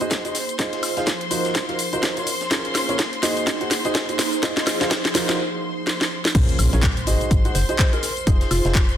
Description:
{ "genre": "piano house", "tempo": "125 BPM", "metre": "4/4", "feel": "swing 59% on 16ths", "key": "Bb minor", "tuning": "A4 = 440 Hz", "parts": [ { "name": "warm studio violin section", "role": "sustained chords", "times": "0.0-9.0 s", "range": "C5 to C6", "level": "-29 LUFS", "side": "left 1 dB", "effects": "sidechain pumping" }, { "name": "clear baby grand piano", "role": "riff", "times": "0.0-8.7 s", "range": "Db4 to Gb5", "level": "-27 LUFS", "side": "right 2 dB", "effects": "sidechain pumping, low-pass filter, dub echo" }, { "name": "house drum kit", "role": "drums", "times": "0.0-9.0 s", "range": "crash cymbal, handclaps, hi-hat, shaker, snare drum, woodblock", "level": "-23 LUFS", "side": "equal", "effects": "overdrive" }, { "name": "ethereal airy pad", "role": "texture", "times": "0.0-9.0 s", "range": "Eb4 to C5", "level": "-30 LUFS", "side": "right 1 dB", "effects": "ensemble chorus, built-in reverb, phaser, sidechain pumping" }, { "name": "breakbeat sampler-style drum kit", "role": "drums", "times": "0.1-8.9 s", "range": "hi-hat, snare drum", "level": "-33 LUFS", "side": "right 1 dB", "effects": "none" }, { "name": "electronic kick drum", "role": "drums", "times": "0.1-8.9 s", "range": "none", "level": "-20 LUFS", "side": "equal", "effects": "overdrive, high-pass filter on kick" }, { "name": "organ-like FM bass", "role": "bass", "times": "6.3-9.0 s", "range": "F1 to Bb1", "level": "-21 LUFS", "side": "equal", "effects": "sidechain pumping" }, { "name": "impact", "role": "sound effects", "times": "6.4-8.3 s", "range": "none", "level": "-28 LUFS", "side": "equal", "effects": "none" }, { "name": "soft struck synth lead", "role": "melody", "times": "7.5-9.0 s", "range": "F4 to C5", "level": "-28 LUFS", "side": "equal", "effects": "chorus, dub echo" } ], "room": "light reverb, digital ambience", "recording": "none", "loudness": "-18 LUFS", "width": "side -10 dB against mid", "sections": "0.0-6.3 A section; 6.3-9.0 B section", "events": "build-up 0.0-6.3; drum fill 0.0-5.4, 5.9-6.3; break 5.4-6.3; drop 6.3-9.0; impact 6.3-8.3", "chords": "0.0 Ab7; 0.6 Fm7; 1.5 Ebm9; 2.5 Bbm9; 3.2 Ab7; 4.4 Fm7; 5.4 N.C.; 6.3 Bbm9; 7.1 Ab7; 8.3 Fm7", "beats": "0.11 | 0.59 1.07 1.55 2.03 | 2.51 2.99 3.47 3.95 | 4.43 4.91 5.39 5.87 | 6.35 6.83 7.31 7.79 | 8.27 8.75" }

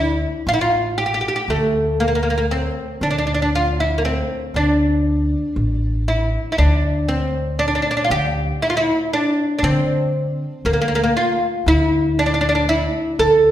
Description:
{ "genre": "Turkish makam ensemble", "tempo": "118 BPM (eighths)", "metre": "10/8", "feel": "straight", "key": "D makam ussak", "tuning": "A4 = 441 Hz", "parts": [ { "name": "oud", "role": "melody", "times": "0.0-13.5 s", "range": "A3 to A4", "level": "-18 LUFS", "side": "equal", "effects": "none" }, { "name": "upright bass", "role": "bass", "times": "0.0-13.5 s", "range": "A1 to D3", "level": "-21 LUFS", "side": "equal", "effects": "none" } ], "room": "wet recital hall reverb, RT60 1.4 s", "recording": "recorded in a church or concert hall", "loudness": "-16 LUFS", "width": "side -12 dB against mid", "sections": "0.0-6.6 A section; 6.6-13.5 B section", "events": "none", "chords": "none", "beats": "0.47 0.97 | 1.48 1.99 2.50 3.01 3.52 4.03 4.54 5.05 5.56 6.07 | 6.58 7.09 7.60 8.11 8.62 9.13 9.64 10.14 10.65 11.16 | 11.67 12.18 12.69 13.20" }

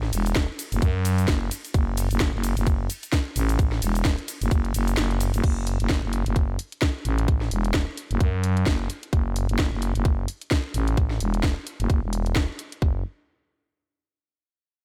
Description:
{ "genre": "bass house", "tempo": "130 BPM", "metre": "4/4", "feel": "swing 58% on 16ths", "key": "unclear", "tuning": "A4 = 440 Hz", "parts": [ { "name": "growling FM bass", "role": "bass", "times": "0.0-13.0 s", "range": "E1 to F#2", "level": "-26 LUFS", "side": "equal", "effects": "tube saturation, sidechain pumping" }, { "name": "garage drum kit", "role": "drums", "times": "0.0-12.8 s", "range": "cabasa, crash cymbal, hi-hat, ride cymbal, snare drum", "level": "-32 LUFS", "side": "equal", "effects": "overdrive" }, { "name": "electronic kick drum", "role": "drums", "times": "0.4-12.9 s", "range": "none", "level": "-24 LUFS", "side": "equal", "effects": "overdrive" } ], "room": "digital ambience", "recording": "none", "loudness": "-25 LUFS", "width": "mono", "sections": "0.0-5.4 A section; 5.4-12.8 B section; 12.8-14.7 C section", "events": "drop 0.0-5.4; kick drops out 5.0-5.4; filter sweep on FM bass 5.4-12.8", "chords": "none", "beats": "0.36 0.82 1.28 | 1.74 2.21 2.67 3.13 | 3.59 4.05 4.51 4.97 | 5.44 5.90 6.36 6.82 | 7.28 7.74 8.21 8.67 | 9.13 9.59 10.05 10.51 | 10.97 11.44 11.90 12.36 | 12.82" }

